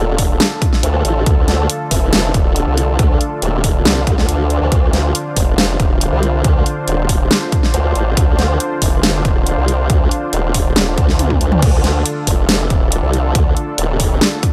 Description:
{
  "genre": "heavy wobble dubstep",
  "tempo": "139 BPM",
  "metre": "4/4",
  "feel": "half-time",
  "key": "D phrygian",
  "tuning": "A4 = 440 Hz",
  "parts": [
    { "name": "supersaw pad", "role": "sustained chords", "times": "0.0-14.5 s", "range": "D3 to C5", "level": "-24 LUFS", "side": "equal", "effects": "sidechain pumping, low-pass filter" },
    { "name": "formant-sweep wobble bass", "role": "bass", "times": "0.0-14.2 s", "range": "Eb1 to D2", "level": "-18 LUFS", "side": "equal", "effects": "chorus, overdrive" },
    { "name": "dubstep drum kit", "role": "drums", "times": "0.2-14.5 s", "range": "crash cymbal, hi-hat, snare drum, toms", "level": "-20 LUFS", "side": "equal", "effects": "none" },
    { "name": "electronic kick drum", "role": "drums", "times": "0.2-14.5 s", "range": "none", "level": "-18 LUFS", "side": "equal", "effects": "none" }
  ],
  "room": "little or no reverb",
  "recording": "none",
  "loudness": "-15 LUFS",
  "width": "mono",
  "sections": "0.0-14.5 A section",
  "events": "drum fill 11.2-11.6",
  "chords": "0.0 Dm",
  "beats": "0.40 0.83 | 1.26 1.70 2.13 2.56 | 2.99 3.42 3.85 4.29 | 4.72 5.15 5.58 6.01 | 6.44 6.88 7.31 7.74 | 8.17 8.60 9.03 9.47 | 9.90 10.33 10.76 11.19 | 11.62 12.06 12.49 12.92 | 13.35 13.78 14.21"
}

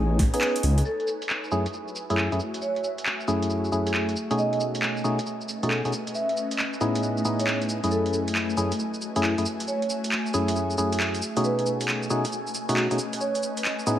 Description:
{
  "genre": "UK garage, two-step garage",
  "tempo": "136 BPM",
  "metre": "4/4",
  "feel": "swing 66% on 16ths",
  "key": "F# dorian",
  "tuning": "A4 = 440 Hz",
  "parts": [
    { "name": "percussive organ stab", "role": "stabs", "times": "0.0-14.0 s", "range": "F#2 to G#4", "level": "-26 LUFS", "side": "equal", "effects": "chorus, tape echo" },
    { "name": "dark detuned saw bass", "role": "bass", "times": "0.0-0.8 s", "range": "A1 to C#2", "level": "-22 LUFS", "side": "equal", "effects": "tube saturation, sidechain pumping" },
    { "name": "ethereal airy pad", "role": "texture", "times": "0.0-14.0 s", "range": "A3 to G#5", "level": "-32 LUFS", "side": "equal", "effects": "ensemble chorus, built-in reverb, phaser, sidechain pumping" },
    { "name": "garage drum kit", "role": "drums", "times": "0.2-14.0 s", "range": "handclaps, hi-hat, shaker, snare drum", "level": "-29 LUFS", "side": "equal", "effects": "overdrive, low-pass filter on hats, studio reverb, low-pass filter on snare, low-pass filter on perc" },
    { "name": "vibraphone with medium mallets", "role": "melody", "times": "0.3-13.4 s", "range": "E4 to E5", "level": "-31 LUFS", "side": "right 2 dB", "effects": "dub echo" }
  ],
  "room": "moderate lush hall reverb, RT60 1.9 s",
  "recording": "vinyl crackle",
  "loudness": "-23 LUFS",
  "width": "side -11 dB against mid",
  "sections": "0.9-14.0 A section",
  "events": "none",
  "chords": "0.0 Amaj9#11; 0.9 F#m9; 4.2 B13; 6.1 Amaj9#11; 7.9 F#m9; 11.2 B13; 13.2 Amaj9#11",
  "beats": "0.41 | 0.85 1.29 1.74 2.18 | 2.62 3.06 3.50 3.94 | 4.38 4.82 5.26 5.71 | 6.15 6.59 7.03 7.47 | 7.91 8.35 8.79 9.24 | 9.68 10.12 10.56 11.00 | 11.44 11.88 12.32 12.77 | 13.21 13.65"
}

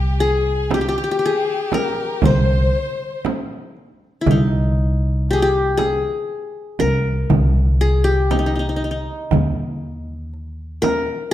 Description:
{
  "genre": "Arabic maqam ensemble",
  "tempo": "119 BPM (eighths)",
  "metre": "10/8",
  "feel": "straight",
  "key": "C maqam saba",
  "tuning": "A4 = 442 Hz",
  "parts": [
    { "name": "qanun", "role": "melody", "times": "0.0-11.3 s", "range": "Eb4 to C5", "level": "-21 LUFS", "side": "left 3 dB", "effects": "none" },
    { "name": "bright studio violin section", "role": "second line", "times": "0.0-3.2 s", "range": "G4 to C5", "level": "-31 LUFS", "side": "equal", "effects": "none" },
    { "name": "rich violin", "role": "second line", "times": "0.0-3.2 s", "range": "G4 to C5", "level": "-27 LUFS", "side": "left 5 dB", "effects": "none" },
    { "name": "upright bass", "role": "bass", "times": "0.0-11.1 s", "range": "C2 to Eb2", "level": "-19 LUFS", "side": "equal", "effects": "none" },
    { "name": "darbuka", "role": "percussion", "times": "0.2-11.1 s", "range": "none", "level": "-23 LUFS", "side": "left 1 dB", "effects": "none" },
    { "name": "frame drum", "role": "percussion", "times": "0.7-11.1 s", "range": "none", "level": "-23 LUFS", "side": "right 5 dB", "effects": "none" }
  ],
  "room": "moderate recital hall reverb, RT60 1.4 s",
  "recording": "dark, warm production",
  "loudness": "-16 LUFS",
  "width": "side -12 dB against mid",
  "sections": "0.0-4.3 A section; 4.3-11.3 B section",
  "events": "none",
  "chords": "none",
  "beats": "0.22 0.72 1.23 1.73 2.24 2.74 3.25 3.75 | 4.26 4.77 5.27 5.78 6.28 6.79 7.29 7.80 8.31 8.81 | 9.32 9.82 10.33 10.84"
}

